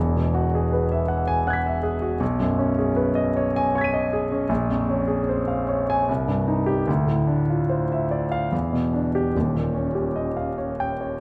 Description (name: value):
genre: classical, impressionist solo piano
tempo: 66-81 BPM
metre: 3/4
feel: rubato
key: unclear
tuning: A4 = 440 Hz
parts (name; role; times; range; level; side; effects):
- warm concert grand piano; solo; 0.0-11.2 s; Eb1 to D#7; -23 LUFS; equal; none
room: wet concert hall reverb, RT60 2.1 s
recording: dark, warm production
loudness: -23 LUFS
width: mono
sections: 0.0-11.2 A section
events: none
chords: 0.0 Eadd9; 2.2 B69; 4.5 Bbm9; 6.1 Cm; 6.9 Dm9; 8.5 Em7; 9.3 Eb9